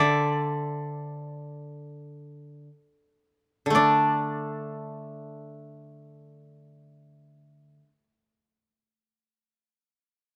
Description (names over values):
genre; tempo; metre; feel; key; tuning
japanese traditional, Japanese chamber music; free time; none; none; unclear; A4 = 440 Hz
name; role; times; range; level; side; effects
koto; melody; 0.0-7.8 s; C5 to E5; -29 LUFS; equal; none
koto; accompaniment; 0.0-7.9 s; D3 to D4; -29 LUFS; equal; none
room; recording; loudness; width
little or no reverb; close, detailed microphones; -26 LUFS; mono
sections
0.0-3.8 A section; 3.8-8.1 B section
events
slowing down 0.0-3.8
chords
none